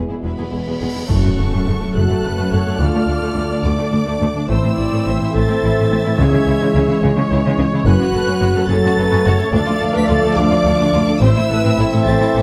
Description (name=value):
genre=cinematic, epic orchestral film score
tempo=71 BPM (dotted quarters)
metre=6/8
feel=straight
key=F# minor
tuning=A4 = 440 Hz
part: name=rich symphonic violin section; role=melody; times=0.0-12.4 s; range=G#4 to B6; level=-30 LUFS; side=equal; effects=none
part: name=clear trombone section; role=sustained chords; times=0.0-12.4 s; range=B2 to C4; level=-24 LUFS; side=equal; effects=none
part: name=warm French horn section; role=sustained chords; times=0.0-12.4 s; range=G#3 to B4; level=-24 LUFS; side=equal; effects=none
part: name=rich symphonic cello section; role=bass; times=0.0-12.4 s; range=D2 to C#3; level=-22 LUFS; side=equal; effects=none
part: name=cymbal swell and impact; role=sound effects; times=0.7-2.8 s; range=none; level=-27 LUFS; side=equal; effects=none
part: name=clear symphonic violin section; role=second line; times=0.1-12.4 s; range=G#3 to F5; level=-29 LUFS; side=equal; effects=none
part: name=rich symphonic viola section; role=accompaniment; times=0.1-12.4 s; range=F#4 to E5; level=-28 LUFS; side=equal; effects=none
part: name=rich symphonic double bass section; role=bass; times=0.2-12.4 s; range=E1 to D2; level=-22 LUFS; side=equal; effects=none
part: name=timpani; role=percussion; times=6.2-7.0 s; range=C#3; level=-24 LUFS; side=equal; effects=none
room=moderate recital hall reverb, RT60 1.8 s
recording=none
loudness=-16 LUFS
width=mono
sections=0.0-1.1 A section; 1.1-12.4 B section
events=cymbal swell 0.7-1.1; impact 1.1-2.8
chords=0.0 E; 1.1 F#m; 2.8 Dm; 4.5 Am; 6.2 C#m; 7.9 F#m; 9.5 Dm; 11.2 Am